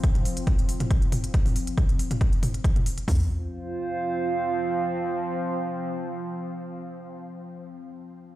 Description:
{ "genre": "driving peak-time techno", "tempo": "138 BPM", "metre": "4/4", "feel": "straight", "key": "unclear", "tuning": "A4 = 440 Hz", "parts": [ { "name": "deep dark ambient pad", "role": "drone", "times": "0.0-7.4 s", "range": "F3 to C4", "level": "-33 LUFS", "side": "left 2 dB", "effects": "chorus, built-in reverb, sidechain pumping" }, { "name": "techno drum kit", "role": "drums", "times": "0.0-3.2 s", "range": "hi-hat, kick drum, toms", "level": "-23 LUFS", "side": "equal", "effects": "studio reverb" }, { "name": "techno drum kit", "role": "drums", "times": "0.0-3.1 s", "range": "hi-hat, toms", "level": "-30 LUFS", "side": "equal", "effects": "studio reverb" }, { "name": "warbly tape-like pad", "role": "texture", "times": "0.0-7.3 s", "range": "F4 to F5", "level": "-30 LUFS", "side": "right 4 dB", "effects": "chorus, built-in reverb, sidechain pumping" } ], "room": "light reverb, digital ambience", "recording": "played on a big sound system in a bare room, large studio reverb", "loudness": "-23 LUFS", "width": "side -15 dB against mid", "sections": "0.0-3.1 A section; 3.1-6.6 B section", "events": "none", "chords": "0.0 F5" }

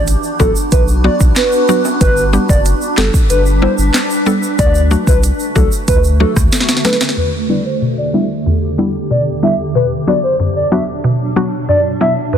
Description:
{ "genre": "dancehall", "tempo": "93 BPM", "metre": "4/4", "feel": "straight", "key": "E minor", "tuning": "A4 = 440 Hz", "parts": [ { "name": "hollow clarinet-like synth lead", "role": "melody", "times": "0.0-12.4 s", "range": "A4 to E5", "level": "-17 LUFS", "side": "equal", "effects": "chorus, phaser, low-pass filter, ping-pong delay" }, { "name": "granular cloud pad", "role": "sustained chords", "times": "0.0-12.4 s", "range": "E2 to B4", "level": "-19 LUFS", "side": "right 1 dB", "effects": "built-in reverb, sidechain pumping, low-pass filter" }, { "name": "saturated sub bass", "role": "bass", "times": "0.0-6.5 s", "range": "F#1 to D2", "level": "-14 LUFS", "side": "equal", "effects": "none" }, { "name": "afro-pop drum kit", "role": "drums", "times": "0.1-7.2 s", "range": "handclaps, hi-hat, kick drum, rim click, snare drum", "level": "-14 LUFS", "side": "equal", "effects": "none" }, { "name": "egg shaker and timbales", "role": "percussion", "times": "0.1-7.2 s", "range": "none", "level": "-26 LUFS", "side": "right 8 dB", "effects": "none" }, { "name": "mallet-like synth pluck", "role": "accompaniment", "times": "0.4-12.4 s", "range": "E2 to A4", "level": "-16 LUFS", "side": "left 1 dB", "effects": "chorus, low-pass filter" } ], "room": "little or no reverb", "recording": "dense, heavily limited modern master", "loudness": "-11 LUFS", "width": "side -8 dB against mid", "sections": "0.0-7.2 A section; 7.2-12.4 B section", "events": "drum fill 6.5-7.2; filter sweep 7.2-12.4", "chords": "0.0 Bm; 2.0 G; 4.6 D; 7.2 Em7; 9.8 Bm" }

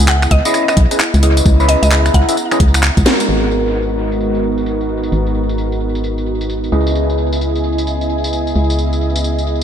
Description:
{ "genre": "UK garage, two-step garage", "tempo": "131 BPM", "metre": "4/4", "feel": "swing 62% on 16ths", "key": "G# minor", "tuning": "A4 = 441 Hz", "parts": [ { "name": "mallet-like synth pluck", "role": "melody", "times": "0.0-2.8 s", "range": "D#5 to F#5", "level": "-21 LUFS", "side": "equal", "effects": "chorus, dub echo" }, { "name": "warm analog pad", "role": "sustained chords", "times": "0.0-9.6 s", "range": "B3 to A#5", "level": "-22 LUFS", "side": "right 2 dB", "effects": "lush chorus, sidechain pumping" }, { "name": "organ-like FM bass", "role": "bass", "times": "0.0-9.6 s", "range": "G#1 to C#2", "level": "-16 LUFS", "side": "equal", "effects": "none" }, { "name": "garage drum kit", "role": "drums", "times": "0.0-9.5 s", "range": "crash cymbal, finger snaps, handclaps, hi-hat, snare drum, tambourine", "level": "-19 LUFS", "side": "equal", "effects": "low-pass filter on perc, studio reverb, low-pass filter on hats, low-pass filter on snare, low-pass filter on cymbals, dub echo" }, { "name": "electronic kick drum", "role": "drums", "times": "0.3-3.0 s", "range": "none", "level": "-13 LUFS", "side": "equal", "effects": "studio reverb" }, { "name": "overdriven tine electric piano", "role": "stabs", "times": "0.5-9.6 s", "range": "G#3 to E5", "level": "-19 LUFS", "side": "equal", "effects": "phaser, low-pass filter, tape echo" } ], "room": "light reverb", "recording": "echo-heavy mix", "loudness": "-12 LUFS", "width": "side -9 dB against mid", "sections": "0.0-3.3 A section; 3.3-9.6 B section", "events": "drum fill 3.1; band accent 3.1; filter sweep on drum 3.3-9.6", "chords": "0.0 C#m9; 3.3 G#m9; 6.7 C#m9" }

